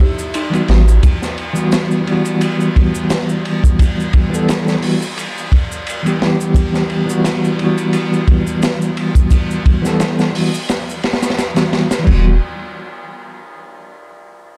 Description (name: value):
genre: trip hop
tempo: 87 BPM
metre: 4/4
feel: swing 54% on 16ths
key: E minor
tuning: A4 = 436 Hz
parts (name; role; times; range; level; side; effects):
- dark detuned synth bell; arpeggios; 0.0-1.1 s; D#4 to E5; -28 LUFS; equal; chorus, vintage 12-bit sampler grit, tape echo
- crunchy breakbeat drum kit; drums; 0.0-12.2 s; crash cymbal, hi-hat, kick drum, ride cymbal, snare drum; -19 LUFS; equal; none
- egg shaker; percussion; 0.2-12.0 s; none; -36 LUFS; equal; none
- bell-like tine electric piano; accompaniment; 0.5-12.4 s; E3 to A4; -19 LUFS; equal; tremolo, tape echo
- round analog bass; bass; 0.7-1.0, 12.1-12.4 s; E1 to A1; -13 LUFS; equal; none
room: small room ambience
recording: dark, warm production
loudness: -15 LUFS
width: mono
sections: 0.0-12.1 A section; 12.1-14.6 B section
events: none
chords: 0.0 Emadd9